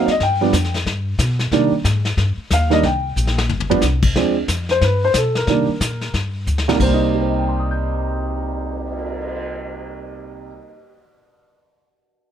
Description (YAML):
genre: jazz piano trio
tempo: 182 BPM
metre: 4/4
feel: swing 62% on 8ths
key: C minor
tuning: A4 = 440 Hz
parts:
  - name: warm upright piano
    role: melody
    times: 0.0-11.2 s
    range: C2 to G6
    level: -19 LUFS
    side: right 2 dB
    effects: none
  - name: upright bass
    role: bass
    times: 0.0-10.6 s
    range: G1 to C3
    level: -21 LUFS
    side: left 1 dB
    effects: none
  - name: vintage brush drum kit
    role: drums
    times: 0.1-9.4 s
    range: brushed snare drum, crash cymbal, cymbal swell, hi-hat, kick drum, snare drum, toms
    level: -23 LUFS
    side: left 2 dB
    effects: none
room: little or no reverb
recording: close, detailed microphones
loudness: -16 LUFS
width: side -9 dB against mid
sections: 0.0-4.2 A section; 4.2-6.8 B section; 6.8-9.4 C section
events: drum fill 3.2-3.8, 6.5-6.8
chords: 0.2 G7; 1.5 Cm7; 3.5 N.C.; 4.2 Dm7b5; 4.8 G; 5.5 Cm7; 6.1 G5; 6.8 Cm7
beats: | 0.20 0.53 0.86 1.19 | 1.52 1.85 2.18 2.51 | 2.84 3.17 3.50 3.83 | 4.16 4.49 4.82 5.15 | 5.48 5.81 6.14 6.47 | 6.80 7.13 7.46 7.79 | 8.12 8.45 8.78 9.11